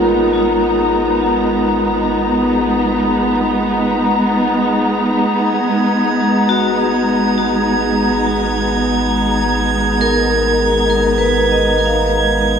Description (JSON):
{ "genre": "ambient", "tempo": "51 BPM", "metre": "4/4", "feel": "straight", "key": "G# dorian", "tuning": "A4 = 440 Hz", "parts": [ { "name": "muted studio string section", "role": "sustained chords", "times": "0.0-12.6 s", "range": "G#3 to A#5", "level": "-15 LUFS", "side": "equal", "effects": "none" }, { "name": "vibraphone with hard mallets", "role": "arpeggios", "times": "0.0-12.6 s", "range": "E#4 to E#5", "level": "-19 LUFS", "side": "left 1 dB", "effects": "ping-pong delay" }, { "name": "round analog bass", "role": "bass", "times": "0.0-12.6 s", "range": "G#1", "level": "-26 LUFS", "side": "equal", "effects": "none" }, { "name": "overtone-sweeping drone", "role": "drone", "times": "0.1-12.6 s", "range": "G#3 to G#4", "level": "-25 LUFS", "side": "left 1 dB", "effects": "chorus, built-in reverb" }, { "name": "drifting glass-harmonics texture", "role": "texture", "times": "5.3-12.6 s", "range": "G#6", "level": "-20 LUFS", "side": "right 6 dB", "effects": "chorus, built-in reverb" } ], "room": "wet concert hall reverb, RT60 2.3 s", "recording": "none", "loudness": "-13 LUFS", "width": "side -7 dB against mid", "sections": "0.0-12.6 A section", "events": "fade-in on analog synth bass 0.0-12.6; fade-in on synth drone 0.0-12.6; fade-out 11.6-12.6", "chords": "0.0 G#m", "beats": "| 0.61 1.79 2.97 4.14 | 5.32 6.50 7.67 8.85 | 10.03 11.20 12.38" }